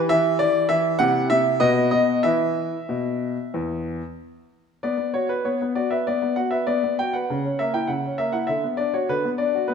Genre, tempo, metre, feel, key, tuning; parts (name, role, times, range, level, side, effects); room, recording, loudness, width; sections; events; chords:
classical-period piano sonatina; 92-102 BPM; 4/4; rubato; E minor, B minor from 4.8 s; A4 = 440 Hz
clear grand piano; solo; 0.0-9.7 s; E2 to G5; -20 LUFS; left 1 dB
moderate recital hall reverb, RT60 1.5 s; -20 LUFS; side -6 dB against mid
0.0-4.8 A section; 4.8-9.7 B section
0.0 Em; 1.0 C; 1.6 B; 2.2 E5; 4.8 B5; 7.3 C#madd11; 8.5 Bm/D